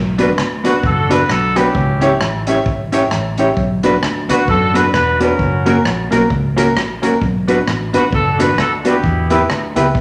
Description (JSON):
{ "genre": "ska", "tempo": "132 BPM", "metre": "4/4", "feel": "swing 59% on 8ths", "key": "B minor", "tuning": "A4 = 439 Hz", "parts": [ { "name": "fingered electric bass", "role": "bass", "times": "0.0-10.0 s", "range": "E1 to F#2", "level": "-22 LUFS", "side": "equal", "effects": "none" }, { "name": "clean electric guitar", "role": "accompaniment", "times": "0.2-9.9 s", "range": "A#3 to C#5", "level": "-20 LUFS", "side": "equal", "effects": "none" }, { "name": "warm upright piano", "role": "stabs", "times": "0.2-9.9 s", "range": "C#4 to C#5", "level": "-21 LUFS", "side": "equal", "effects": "none" }, { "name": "swinging big-band drum kit", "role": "drums", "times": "0.2-10.0 s", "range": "hi-hat, kick drum, rim click", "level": "-24 LUFS", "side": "equal", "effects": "none" }, { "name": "clear horn section", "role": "melody", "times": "0.7-9.7 s", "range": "B3 to B4", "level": "-20 LUFS", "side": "equal", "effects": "none" } ], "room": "wet large studio reverb, RT60 0.9 s", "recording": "none", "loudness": "-15 LUFS", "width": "mono", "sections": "0.0-10.0 A section", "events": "none", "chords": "0.0 Bm; 1.7 C#dim; 3.6 Bm; 5.4 F#; 7.2 Bm; 9.0 Em" }